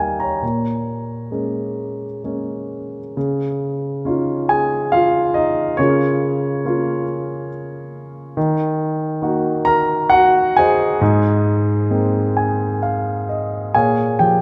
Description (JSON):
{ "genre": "classical, lyrical solo piano", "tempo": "68 BPM", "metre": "3/4", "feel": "uneven beats, rubato", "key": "Bb dorian, Db major from 3.2 s", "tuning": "A4 = 441 Hz", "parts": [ { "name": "warm grand piano", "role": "solo", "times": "0.0-14.4 s", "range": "Eb2 to Bb5", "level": "-19 LUFS", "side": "equal", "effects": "none" } ], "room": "moderate concert hall reverb, RT60 2.1 s", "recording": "none", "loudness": "-19 LUFS", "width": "mono", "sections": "0.0-3.2 A section; 3.2-13.7 B section", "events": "grand piano fill 11.9-13.7", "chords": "0.4 Bbm7; 3.2 Dbadd9; 5.8 Bbm/Db; 8.4 Ebm; 11.0 Abadd9; 13.7 Bbm7" }